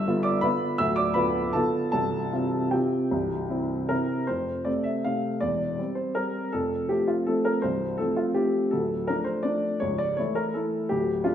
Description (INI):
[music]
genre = classical, piano waltz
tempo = 148-177 BPM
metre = 3/4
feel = rubato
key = F major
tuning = A4 = 440 Hz
[part]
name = warm upright piano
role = solo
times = 0.0-11.3 s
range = C1 to E6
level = -24 LUFS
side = equal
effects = none
[sound]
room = wet recital hall reverb, RT60 1.6 s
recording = none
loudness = -24 LUFS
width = side -9 dB against mid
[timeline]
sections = 0.0-4.3 A section; 4.3-11.3 A section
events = none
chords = 0.0 G7; 1.9 Csus4; 3.1 C; 4.3 F; 5.4 C/E; 6.5 F; 8.7 Dm; 9.8 A/C#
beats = 0.07 0.44 | 0.80 1.16 1.55 | 1.93 2.32 2.73 | 3.12 3.50 3.90 | 4.29 4.67 5.06 | 5.43 5.79 6.16 | 6.53 6.89 7.28 | 7.64 8.00 8.37 | 8.74 9.09 9.46 | 9.83 10.19 10.56 | 10.91 11.26